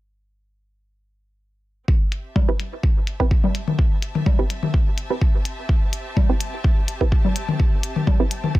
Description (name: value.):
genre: minimal techno.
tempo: 126 BPM.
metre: 4/4.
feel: swing 53% on 16ths.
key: A minor.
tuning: A4 = 439 Hz.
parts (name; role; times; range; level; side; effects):
electronic kick drum; drums; 1.9-8.6 s; none; -18 LUFS; equal; studio ambience.
rich studio string section; texture; 1.9-8.6 s; G4 to A5; -35 LUFS; left 1 dB; sidechain pumping.
electronic hi-hat; drums; 2.1-8.4 s; none; -29 LUFS; left 3 dB; low-pass filter on hats, studio ambience.
electronic congas and toms; percussion; 2.4-8.5 s; none; -24 LUFS; left 4 dB; studio ambience.
wavetable chord stab; stabs; 2.5-8.3 s; C4 to B4; -26 LUFS; right 5 dB; dub echo.
room: little or no reverb.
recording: none.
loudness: -18 LUFS.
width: side -17 dB against mid.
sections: 1.9-8.6 A section.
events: fade-in on string section 1.9-8.6.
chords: 1.9 Am7.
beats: | 1.88 2.36 2.83 3.31 | 3.79 4.26 4.74 5.21 | 5.69 6.17 6.64 7.12 | 7.60 8.07 8.55.